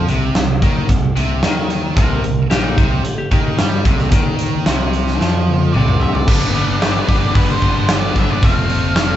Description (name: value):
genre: classic rock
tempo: 111 BPM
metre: 4/4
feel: straight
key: unclear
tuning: A4 = 441 Hz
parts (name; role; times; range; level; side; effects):
- crunchy overdriven guitar; riff; 0.0-9.2 s; F2 to D4; -23 LUFS; left 6 dB; none
- tight distorted guitar; riff; 0.0-9.2 s; Bb2 to B4; -23 LUFS; right 8 dB; distortion
- growling fingered electric bass; bass; 0.0-9.2 s; F1 to G2; -21 LUFS; equal; overdrive
- big rock drum kit; drums; 0.1-9.1 s; crash cymbal, hi-hat, kick drum, snare drum, toms; -16 LUFS; equal; none
- clean lap steel guitar; second line; 2.0-4.4 s; Eb4 to Bb4; -27 LUFS; left 1 dB; none
- octave-fuzz lead guitar; melody; 5.7-9.2 s; B4 to F5; -22 LUFS; equal; distortion
room: light reverb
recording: band playing live in one room, nothing above 7.9 kHz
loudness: -13 LUFS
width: side -12 dB against mid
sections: 0.0-6.3 A section; 6.3-9.2 B section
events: drum fill 5.2-6.3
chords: 0.0 C5; 6.3 G; 8.4 F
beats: 0.36 0.90 1.44 | 1.98 2.52 3.06 3.59 | 4.13 4.67 5.21 5.75 | 6.29 6.82 7.36 7.90 | 8.44 8.98